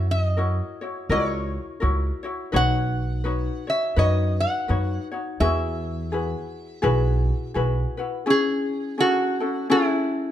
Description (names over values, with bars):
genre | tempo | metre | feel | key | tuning
Hawaiian | 84 BPM | 4/4 | swing 59% on 8ths | E major | A4 = 439 Hz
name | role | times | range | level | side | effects
lap resonator guitar | melody | 0.0-10.3 s | E4 to F#5 | -24 LUFS | right 1 dB | none
ukulele | accompaniment | 0.0-10.3 s | C#4 to C#5 | -26 LUFS | left 3 dB | none
upright bass | bass | 0.0-7.8 s | B1 to F#2 | -23 LUFS | right 1 dB | none
room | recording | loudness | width
light reverb | close, detailed microphones | -21 LUFS | side -11 dB against mid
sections
0.0-8.3 A section; 8.3-10.3 B section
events
none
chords
0.0 F#7; 2.5 Badd9; 5.4 Eadd9; 8.3 Amaj7